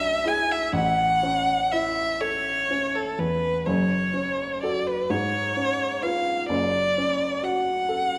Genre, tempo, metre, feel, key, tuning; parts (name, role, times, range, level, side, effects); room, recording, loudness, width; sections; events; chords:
classical, romantic duo for violin and grand piano; 42 BPM (dotted quarters); 6/8; rubato; A major; A4 = 440 Hz
rich violin; melody; 0.0-8.2 s; A4 to G#5; -26 LUFS; equal
dark baby grand piano; accompaniment; 0.0-8.2 s; F#1 to B4; -30 LUFS; equal
wet recital hall reverb, RT60 1.5 s; -24 LUFS; mono
0.0-8.2 A section
0.0 E7/B; 0.7 A; 3.7 F#m; 5.1 C#7/G#; 6.5 F#m